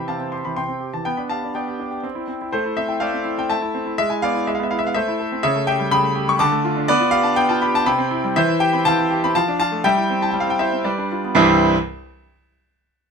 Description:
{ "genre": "classical-period piano sonatina", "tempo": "123 BPM", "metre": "3/4", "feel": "straight", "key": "C major", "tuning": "A4 = 440 Hz", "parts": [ { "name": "clear concert grand piano", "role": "solo", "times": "0.0-11.8 s", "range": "C2 to D6", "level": "-17 LUFS", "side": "equal", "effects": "none" } ], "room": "little or no reverb", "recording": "close, detailed microphones", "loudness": "-17 LUFS", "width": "side -6 dB against mid", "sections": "0.0-11.4 A section; 11.4-12.9 B section", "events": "none", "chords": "0.0 C; 1.1 G/B; 2.0 C; 2.5 Am; 4.0 E/G#; 5.0 Am; 5.4 A7/C#; 6.4 Dm; 6.9 G7/B; 7.9 C; 8.4 C/E; 9.3 Dm/F; 9.8 C/G; 10.9 G7; 11.4 C" }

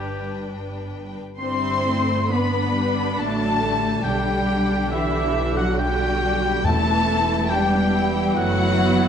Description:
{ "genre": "classical, slow romantic movement for symphony orchestra", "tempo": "61-72 BPM", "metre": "3/4", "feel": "rubato", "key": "G major", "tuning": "A4 = 440 Hz", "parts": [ { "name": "warm symphonic violin section", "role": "melody", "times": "0.0-9.1 s", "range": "E5 to C6", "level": "-28 LUFS", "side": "left 4 dB", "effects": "none" }, { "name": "clear oboe", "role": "second line", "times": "0.0-9.1 s", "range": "G4 to C6", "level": "-28 LUFS", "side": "right 1 dB", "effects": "none" }, { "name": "rich chamber violin section", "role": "second line", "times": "0.0-9.1 s", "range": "D4 to C5", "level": "-31 LUFS", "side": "left 3 dB", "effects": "none" }, { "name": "warm studio viola section", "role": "accompaniment", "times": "0.0-9.1 s", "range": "D3 to G4", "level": "-27 LUFS", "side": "equal", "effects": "none" }, { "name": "rich chamber cello section", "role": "bass", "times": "0.0-9.1 s", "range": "G2 to C4", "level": "-27 LUFS", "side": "right 2 dB", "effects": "none" }, { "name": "rich studio double bass section", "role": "bass", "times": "0.0-9.1 s", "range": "E1 to B1", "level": "-27 LUFS", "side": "right 2 dB", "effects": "none" }, { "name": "large flute ensemble", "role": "second line", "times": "1.4-9.0 s", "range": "E5 to C6", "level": "-29 LUFS", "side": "left 3 dB", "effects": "none" }, { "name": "mellow French horn section", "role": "sustained chords", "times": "1.4-9.1 s", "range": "E3 to C4", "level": "-27 LUFS", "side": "left 4 dB", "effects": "none" }, { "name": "warm trombone section", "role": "sustained chords", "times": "1.4-9.1 s", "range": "D3 to D4", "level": "-31 LUFS", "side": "right 4 dB", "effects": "none" }, { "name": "timpani", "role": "percussion", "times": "4.0-7.9 s", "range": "E2 to B2", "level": "-28 LUFS", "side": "left 1 dB", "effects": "none" } ], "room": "moderate scoring stage reverb, RT60 1.6 s", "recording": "dark, warm production", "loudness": "-19 LUFS", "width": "side -8 dB against mid", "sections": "0.0-1.4 A section; 1.4-9.1 B section", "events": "none", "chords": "0.0 G; 4.0 G/B; 6.7 Em" }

